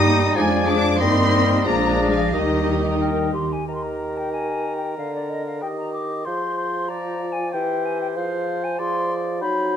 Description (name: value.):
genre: quick classical-period movement for symphony orchestra.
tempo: 87-97 BPM.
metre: 2/4.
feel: straight.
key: Eb major.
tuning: A4 = 439 Hz.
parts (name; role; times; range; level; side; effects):
rich chamber violin section; melody; 0.0-3.0 s; Eb5 to Eb6; -26 LUFS; left 3 dB; none.
rich chamber violin section; second line; 0.0-3.0 s; Eb5 to Eb6; -29 LUFS; left 6 dB; none.
silver concert flute; second line; 0.0-9.8 s; D5 to Bb6; -28 LUFS; left 3 dB; none.
warm clarinet; second line; 0.0-9.8 s; D#4 to Bb4; -30 LUFS; left 2 dB; none.
warm oboe; second line; 0.0-9.8 s; Bb4 to Eb5; -31 LUFS; right 2 dB; none.
mellow bassoon; accompaniment; 0.0-9.8 s; D3 to G3; -26 LUFS; right 2 dB; none.
rich chamber viola section; accompaniment; 0.0-3.4 s; Bb3 to Bb4; -27 LUFS; right 1 dB; none.
mellow French horn section; sustained chords; 0.0-3.3 s; G3 to Eb4; -25 LUFS; left 4 dB; none.
warm chamber cello section; bass; 0.0-3.0 s; Eb3 to Eb4; -24 LUFS; left 1 dB; none.
warm studio double bass section; bass; 0.0-3.5 s; Bb1 to G2; -25 LUFS; right 2 dB; none.
room: moderate scoring stage reverb, RT60 1.5 s.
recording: none.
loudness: -19 LUFS.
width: side -8 dB against mid.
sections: 0.0-3.7 A section; 3.7-9.8 A section.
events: none.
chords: 0.4 Ddim/F; 1.0 Eb/G; 1.7 Bb7; 2.3 Eb; 5.0 Bb/D; 5.6 Eb; 6.3 Fm; 7.5 C/E; 8.2 Fm.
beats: 0.35 | 1.00 1.66 | 2.33 3.01 | 3.68 4.33 | 4.98 5.62 | 6.26 6.90 | 7.54 8.17 | 8.80 9.42.